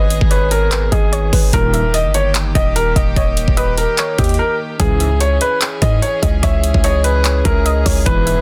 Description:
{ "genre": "hip hop, trap", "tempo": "147 BPM", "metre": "4/4", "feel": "half-time", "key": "unclear", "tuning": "A4 = 440 Hz", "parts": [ { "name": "felt-muted upright piano", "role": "melody", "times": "0.0-8.4 s", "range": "G4 to E5", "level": "-21 LUFS", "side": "equal", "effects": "low-pass filter" }, { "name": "warbly dusty pluck", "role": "second line", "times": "0.0-8.4 s", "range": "B4 to E5", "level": "-28 LUFS", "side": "equal", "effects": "chorus, tape echo" }, { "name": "warm chamber string section", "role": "sustained chords", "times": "0.0-8.4 s", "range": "D#3 to G#4", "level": "-28 LUFS", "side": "equal", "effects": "none" }, { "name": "hard-hitting 808-style bass", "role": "bass", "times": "0.0-8.4 s", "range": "D#1 to G#2", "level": "-19 LUFS", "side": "equal", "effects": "none" }, { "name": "trap drum kit", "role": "drums", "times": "0.1-8.4 s", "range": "handclaps, hi-hat, kick drum", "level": "-19 LUFS", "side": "equal", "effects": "none" }, { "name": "mellow synth brass", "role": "stabs", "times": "1.5-1.8, 4.8-5.1, 8.1-8.4 s", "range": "G2 to E3", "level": "-24 LUFS", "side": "equal", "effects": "chorus" } ], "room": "little or no reverb", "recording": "dense, heavily limited modern master", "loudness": "-15 LUFS", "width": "mono", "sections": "0.0-8.4 A section", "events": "break 4.4-4.8", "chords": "0.0 G#m; 1.5 D#; 4.8 C#m", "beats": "0.31 0.72 1.12 | 1.53 1.94 2.35 2.76 | 3.17 3.57 3.98 4.39 | 4.80 5.21 5.61 6.02 | 6.43 6.84 7.25 7.66 | 8.06" }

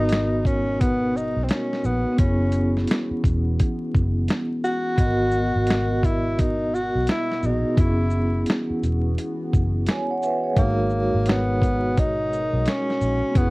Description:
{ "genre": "lo-fi hip hop", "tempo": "86 BPM", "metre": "4/4", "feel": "swing 62% on 16ths", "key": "G# minor", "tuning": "A4 = 440 Hz", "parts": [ { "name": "mellow tenor saxophone", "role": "melody", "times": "0.0-13.5 s", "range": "A#3 to F#4", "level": "-25 LUFS", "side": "equal", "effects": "low-pass filter" }, { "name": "vibraphone with soft mallets", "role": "accompaniment", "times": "0.0-13.5 s", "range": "G#3 to G#5", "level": "-26 LUFS", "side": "right 1 dB", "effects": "low-pass filter" }, { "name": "dark analog pad", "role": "sustained chords", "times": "0.4-13.5 s", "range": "B2 to A#4", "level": "-34 LUFS", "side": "equal", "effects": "chorus, phaser, low-pass filter" }, { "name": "vintage muted fingered electric bass", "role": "bass", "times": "0.0-13.5 s", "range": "E1 to B1", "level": "-24 LUFS", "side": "equal", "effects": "transformer saturation" }, { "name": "dusty soul sampler-style drum kit", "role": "drums", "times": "0.1-13.5 s", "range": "hi-hat, kick drum, shaker, snare drum", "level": "-22 LUFS", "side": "equal", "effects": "none" } ], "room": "light reverb", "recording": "worn, warbling old tape, cassette tape, vinyl crackle, warbly pitch drift", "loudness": "-20 LUFS", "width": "side -23 dB against mid", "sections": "0.0-13.5 A section", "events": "none", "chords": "0.0 G#m9; 2.2 F#9sus4; 5.0 G#m9; 7.8 F#9sus4; 10.6 G#m9", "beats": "0.10 0.79 1.49 | 2.19 2.89 3.58 4.28 | 4.98 5.68 6.37 7.07 | 7.77 8.47 9.16 9.86 | 10.56 11.26 11.96 12.65 | 13.35" }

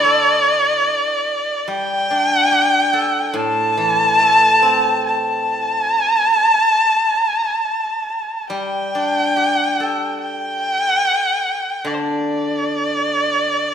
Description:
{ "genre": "chinese traditional, Chinese chamber ensemble", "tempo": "72 BPM", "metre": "4/4", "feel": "rubato", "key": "D shang mode", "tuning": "A4 = 440 Hz", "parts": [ { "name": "rich erhu", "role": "melody", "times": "0.0-13.7 s", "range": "C5 to A5", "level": "-15 LUFS", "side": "equal", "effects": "none" }, { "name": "steel-string zither", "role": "accompaniment", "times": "0.0-13.7 s", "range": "A2 to A4", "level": "-24 LUFS", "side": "equal", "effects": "none" } ], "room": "wet recital hall reverb, RT60 1.6 s", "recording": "minimal, uncompressed stereo recording", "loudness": "-15 LUFS", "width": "side -8 dB against mid", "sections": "0.0-13.7 A section", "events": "none", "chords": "none", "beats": "| 0.06 0.88 1.71 2.54 | 3.37 4.21 5.06 5.93 | 6.80 7.66 8.52 9.38 | 10.22 11.05 11.88 12.70 | 13.52" }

